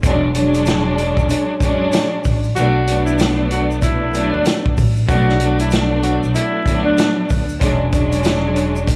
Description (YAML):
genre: hip hop, boom-bap hip-hop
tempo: 95 BPM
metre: 4/4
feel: swing 61% on 16ths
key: B dorian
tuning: A4 = 444 Hz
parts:
  - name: warm studio string section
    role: accompaniment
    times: 0.0-9.0 s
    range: F#3 to D4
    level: -21 LUFS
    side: equal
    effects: high-pass filter, low-pass filter
  - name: upright bass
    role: bass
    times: 0.0-9.0 s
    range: E1 to D2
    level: -22 LUFS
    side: equal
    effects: none
  - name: vintage drum kit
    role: drums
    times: 0.0-9.0 s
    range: hi-hat, kick drum, snare drum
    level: -21 LUFS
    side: equal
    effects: none
  - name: egg shaker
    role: percussion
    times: 0.0-9.0 s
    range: none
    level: -42 LUFS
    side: equal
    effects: none
  - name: breathy tenor saxophone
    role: melody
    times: 2.6-7.1 s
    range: D4 to F#4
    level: -25 LUFS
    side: equal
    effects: high-pass filter, low-pass filter, tape echo
room: studio reverb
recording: dry, gritty hardware recording, vinyl crackle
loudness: -17 LUFS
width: mono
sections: 0.0-9.0 A section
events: kick muted 2.6-3.8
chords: 0.0 E13; 2.6 Bm7; 7.6 E13